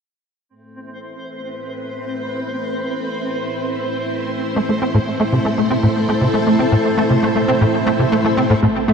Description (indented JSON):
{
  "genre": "ambient, sequencer-driven space music",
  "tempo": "118 BPM",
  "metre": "4/4",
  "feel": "straight",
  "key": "A minor",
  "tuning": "A4 = 440 Hz",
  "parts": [
    { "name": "string machine, full ensemble", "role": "sustained chords", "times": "0.5-8.9 s", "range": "A3 to C5", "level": "-20 LUFS", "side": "equal", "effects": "ensemble chorus" },
    { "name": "twinkling granular texture", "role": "texture", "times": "0.8-8.6 s", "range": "C4", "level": "-26 LUFS", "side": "right 1 dB", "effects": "built-in reverb" },
    { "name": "tight sequencer bass", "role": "riff", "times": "4.6-8.9 s", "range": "A2 to C4", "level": "-16 LUFS", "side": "equal", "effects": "ensemble chorus, tape echo" },
    { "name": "soft round pluck", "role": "arpeggios", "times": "8.6-8.9 s", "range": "A3", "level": "-18 LUFS", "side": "equal", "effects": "chorus, auto-pan, tape echo" },
    { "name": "warm sub bass", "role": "bass", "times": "8.6-8.9 s", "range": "A1", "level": "-35 LUFS", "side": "equal", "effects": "none" }
  ],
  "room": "wet huge ambient reverb, RT60 7.7 s",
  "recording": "dark, warm production",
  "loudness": "-15 LUFS",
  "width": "side -6 dB against mid",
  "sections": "0.5-8.6 A section",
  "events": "fade-in on string machine 0.5-8.6",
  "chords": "0.5 Am"
}